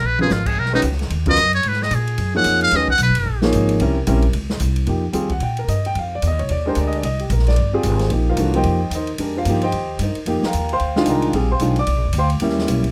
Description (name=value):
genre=modal jazz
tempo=223 BPM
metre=4/4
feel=swing 61% on 8ths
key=G# dorian, F dorian from 4.9 s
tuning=A4 = 440 Hz
part: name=trumpet with metal mute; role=melody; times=0.0-3.4 s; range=D#4 to F#5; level=-20 LUFS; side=equal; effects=none
part: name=upright bass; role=bass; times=0.0-12.9 s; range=F1 to A#2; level=-23 LUFS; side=equal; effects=none
part: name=warm grand piano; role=accompaniment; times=0.2-12.8 s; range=C#3 to D6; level=-23 LUFS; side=equal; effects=none
part: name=swinging big-band drum kit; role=drums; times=0.2-12.9 s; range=crash cymbal, hi-hat, kick drum, ride cymbal, snare drum, toms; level=-31 LUFS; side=equal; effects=none
room=moderate small room reverb, RT60 0.5 s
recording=none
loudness=-19 LUFS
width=mono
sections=0.0-4.9 A section; 4.9-12.9 A section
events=muted trumpet solo 0.0-4.9; drum fill 0.0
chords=0.0 G#m9; 3.8 C7b9; 4.9 F9sus4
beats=0.04 0.31 | 0.58 0.85 1.11 1.38 | 1.65 1.92 2.19 2.46 | 2.73 3.00 3.27 3.54 | 3.81 4.07 4.34 4.61 | 4.88 5.15 5.42 5.69 | 5.96 6.23 6.50 6.76 | 7.03 7.30 7.57 7.84 | 8.11 8.38 8.65 8.92 | 9.19 9.46 9.73 9.99 | 10.27 10.53 10.80 11.07 | 11.34 11.61 11.88 12.15 | 12.42 12.69